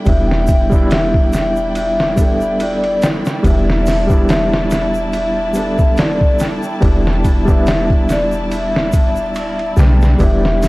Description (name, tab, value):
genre	trip hop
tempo	71 BPM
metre	4/4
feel	swing 56% on 16ths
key	E minor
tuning	A4 = 441 Hz
part	overdriven reed electric piano	accompaniment	0.0-10.7 s	G3 to A4	-19 LUFS	equal	tremolo
part	warm studio string section	sustained chords	0.0-10.7 s	E4 to A5	-26 LUFS	equal	none
part	vibraphone with soft mallets	melody	0.1-10.7 s	D5 to G5	-20 LUFS	left 1 dB	dub echo
part	soft 808-style bass	bass	0.1-10.7 s	D1 to B1	-18 LUFS	equal	tube saturation
part	trip hop sampler-style drum kit	drums	0.1-10.7 s	hi-hat, kick drum, ride cymbal, snare drum	-16 LUFS	equal	none
part	tube shaker	percussion	0.1-10.7 s	none	-39 LUFS	equal	none
room	little or no reverb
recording	dry, gritty hardware recording, vinyl crackle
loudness	-12 LUFS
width	side -21 dB against mid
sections	0.0-10.7 A section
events	none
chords	0.0 Em7